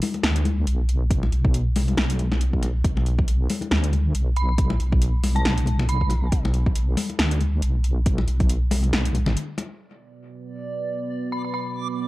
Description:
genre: deep dubstep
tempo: 138 BPM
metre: 4/4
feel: swing 57% on 16ths, half-time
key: B minor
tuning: A4 = 441 Hz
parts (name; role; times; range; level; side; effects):
- deep house drum kit; drums; 0.0-9.7 s; hi-hat, snare drum; -27 LUFS; equal; overdrive
- congas; percussion; 0.0-9.7 s; none; -29 LUFS; left 4 dB; none
- deep soft wobble bass; bass; 0.2-9.4 s; B1 to D2; -21 LUFS; equal; chorus
- electronic kick drum; drums; 1.1-8.5 s; none; -22 LUFS; equal; overdrive
- dark detuned synth bell; melody; 4.4-6.3, 11.3-12.1 s; A5 to B5; -32 LUFS; right 2 dB; chorus, tremolo, dub echo
- dark analog pad; sustained chords; 10.2-12.1 s; B3 to B4; -30 LUFS; right 2 dB; chorus
- backwards swelling texture; texture; 10.6-12.1 s; D5; -32 LUFS; right 5 dB; built-in reverb
room: light reverb, digital ambience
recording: dark, warm production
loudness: -20 LUFS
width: side -18 dB against mid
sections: 0.0-9.8 A section; 9.8-12.1 B section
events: break 9.4-9.8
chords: 0.0 Bm

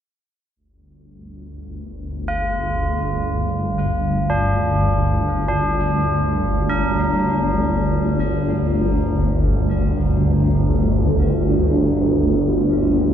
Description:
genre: dark ambient drone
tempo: free time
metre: none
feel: none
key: G minor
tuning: A4 = 435 Hz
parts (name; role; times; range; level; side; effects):
- swarming drone; drone; 1.6-13.1 s; G1 to D2; -18 LUFS; equal; built-in reverb, phaser
- tubular bells; arpeggios; 2.3-13.1 s; D4 to Bb4; -24 LUFS; equal; tape echo
room: wet cathedral reverb, RT60 5.3 s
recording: none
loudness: -17 LUFS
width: side -9 dB against mid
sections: 0.6-13.1 A section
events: none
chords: 0.6 Gm

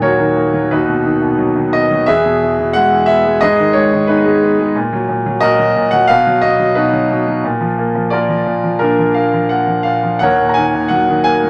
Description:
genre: classical, lyrical solo piano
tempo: 88 BPM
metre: 4/4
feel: rubato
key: Eb minor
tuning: A4 = 440 Hz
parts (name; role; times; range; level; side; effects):
- bright concert grand piano; solo; 0.0-11.5 s; Eb2 to Bb5; -14 LUFS; equal; none
room: moderate studio reverb, RT60 0.6 s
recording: nothing above 10.7 kHz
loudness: -14 LUFS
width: mono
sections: 0.0-11.5 A section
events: none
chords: 0.0 Ebm; 0.7 B/D#; 2.1 E; 3.4 Abm; 4.7 Ebm/Bb; 6.1 B; 7.4 Bb; 10.2 Ebm7

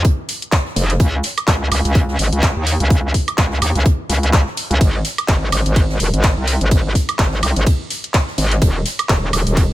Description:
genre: bass house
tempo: 126 BPM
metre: 4/4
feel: swing 57% on 16ths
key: unclear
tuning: A4 = 441 Hz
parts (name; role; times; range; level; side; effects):
- metallic wobble bass; bass; 0.0-9.7 s; Eb1 to Eb2; -17 LUFS; equal; chorus, tube saturation, sidechain pumping
- electronic kick drum; drums; 0.0-9.7 s; none; -16 LUFS; equal; none
- jazz brush drum kit; drums; 0.0-9.7 s; hi-hat, snare drum; -30 LUFS; right 3 dB; sidechain pumping on hats, high-pass filter on hats, high-pass filter on snare, high-pass filter on room
- house drum kit; drums; 0.1-9.7 s; handclaps, hi-hat, ride cymbal, woodblock; -21 LUFS; right 1 dB; none
room: little or no reverb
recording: none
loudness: -14 LUFS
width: side -15 dB against mid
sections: 0.0-9.7 A section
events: none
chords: none

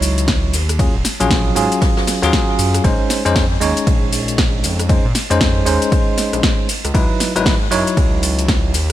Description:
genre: deep house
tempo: 117 BPM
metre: 4/4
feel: swing 61% on 16ths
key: unclear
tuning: A4 = 440 Hz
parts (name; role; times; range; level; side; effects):
- bell-like tine electric piano; stabs; 0.0-8.7 s; Gb3 to Db5; -19 LUFS; equal; auto-pan, sidechain pumping, ping-pong delay
- smooth synth bass; bass; 0.0-8.9 s; Eb1 to Bb2; -20 LUFS; equal; sidechain pumping
- deep house drum kit; drums; 0.0-8.9 s; hi-hat, ride cymbal, rim click, shaker, snare drum; -21 LUFS; equal; overdrive, small room reverb
- jazz brush drum kit; drums; 0.0-8.9 s; hi-hat, ride cymbal, snare drum; -29 LUFS; right 1 dB; sidechain pumping on cymbals, high-pass filter on cymbals, small room reverb, sidechain pumping on hats, high-pass filter on hats, high-pass filter on snare, high-pass filter on room
- electronic kick drum; drums; 0.3-8.6 s; none; -18 LUFS; equal; small room reverb
room: small room ambience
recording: none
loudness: -13 LUFS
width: side -13 dB against mid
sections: 0.0-8.9 A section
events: none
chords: 0.0 Dbmadd9; 0.5 Ebm11; 2.8 Bbm11; 6.7 Dbm11

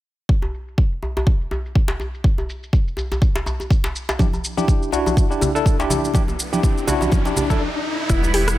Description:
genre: afro house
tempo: 123 BPM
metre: 4/4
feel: swing 57% on 16ths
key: E minor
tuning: A4 = 440 Hz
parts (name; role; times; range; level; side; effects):
- deep house drum kit; drums; 0.3-8.6 s; hi-hat, rim click, shaker; -29 LUFS; equal; low-pass filter on perc, studio ambience, low-pass filter on hats, low-pass filter on snare
- electronic kick drum; drums; 0.3-8.2 s; none; -17 LUFS; equal; studio ambience
- djembe; percussion; 0.4-8.3 s; none; -26 LUFS; equal; none
- tine electric piano; stabs; 4.2-7.6 s; D4 to A4; -22 LUFS; left 1 dB; overdrive, fast stereo tremolo, sidechain pumping, dub echo
- congas; percussion; 4.2-7.6 s; none; -26 LUFS; right 3 dB; none
- riser; sound effects; 5.8-8.1 s; none; -28 LUFS; left 1 dB; none
- bright studio string section; sustained chords; 8.1-8.6 s; D3 to E4; -24 LUFS; right 3 dB; sidechain pumping
- mallet-like synth pluck; arpeggios; 8.1-8.5 s; E4 to G4; -23 LUFS; left 1 dB; chorus, sidechain pumping
- warm sub bass; bass; 8.1-8.6 s; E1; -21 LUFS; equal; sidechain pumping
room: little or no reverb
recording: none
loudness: -18 LUFS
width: side -15 dB against mid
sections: 0.3-8.1 A section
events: riser 5.8-8.1; stop 7.6-8.1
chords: 0.3 Em7

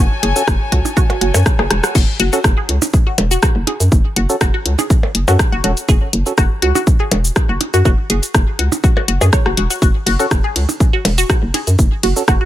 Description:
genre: minimal techno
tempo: 122 BPM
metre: 4/4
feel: swing 53% on 16ths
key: F# minor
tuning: A4 = 440 Hz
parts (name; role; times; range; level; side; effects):
- resonant blip pluck; riff; 0.0-12.4 s; F#4 to F#5; -21 LUFS; left 1 dB; chorus, phaser, sidechain pumping, digital delay
- hollow knocking FM bass; bass; 0.0-12.4 s; E1 to F#2; -16 LUFS; equal; sidechain pumping
- clear studio string section; texture; 0.0-2.0 s; F#4 to G#5; -24 LUFS; left 4 dB; sidechain pumping
- house drum kit; drums; 0.2-12.4 s; crash cymbal, hi-hat, ride cymbal, rim click, shaker; -19 LUFS; left 1 dB; none
- percussive organ stab; stabs; 0.4-6.3, 10.2-12.2 s; C#4 to A4; -23 LUFS; right 2 dB; chorus, digital delay
- electronic kick drum; drums; 0.5-12.4 s; none; -14 LUFS; equal; none
- percussion blips; percussion; 0.9-11.6 s; none; -22 LUFS; right 3 dB; digital delay
room: little or no reverb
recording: none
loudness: -12 LUFS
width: side -13 dB against mid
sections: 0.0-2.0 A section; 2.0-12.5 B section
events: drum fill 1.6-2.0; drop 2.0-12.5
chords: 0.0 F#m; 2.0 F#5

